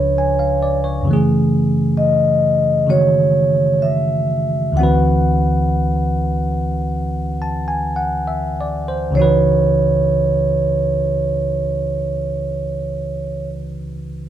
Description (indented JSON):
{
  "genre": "jazz ballad",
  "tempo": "48-67 BPM",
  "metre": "4/4",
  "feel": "swing 68% on 8ths",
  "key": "C# minor",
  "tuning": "A4 = 439 Hz",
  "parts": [
    { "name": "vibraphone with medium mallets", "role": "melody", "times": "0.0-13.5 s", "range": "C#5 to F#5", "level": "-19 LUFS", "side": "right 1 dB", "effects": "plate reverb" },
    { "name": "bell-like tine electric piano", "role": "accompaniment", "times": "0.0-14.3 s", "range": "C#2 to A5", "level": "-17 LUFS", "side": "equal", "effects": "none" }
  ],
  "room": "wet club reverb, RT60 0.7 s",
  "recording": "heard from further back in the room",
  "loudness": "-15 LUFS",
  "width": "side -11 dB against mid",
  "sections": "0.0-1.1 A section; 1.1-9.1 B section; 9.1-14.1 C section",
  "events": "slowing down 1.1-9.1",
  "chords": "0.0 C#7b9; 1.1 F#m9; 4.7 D13; 9.1 C#m11",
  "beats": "0.16 | 1.07 1.97 2.87 3.79 | 4.75 5.75 6.81 7.93 | 9.14 10.39 11.63 12.88"
}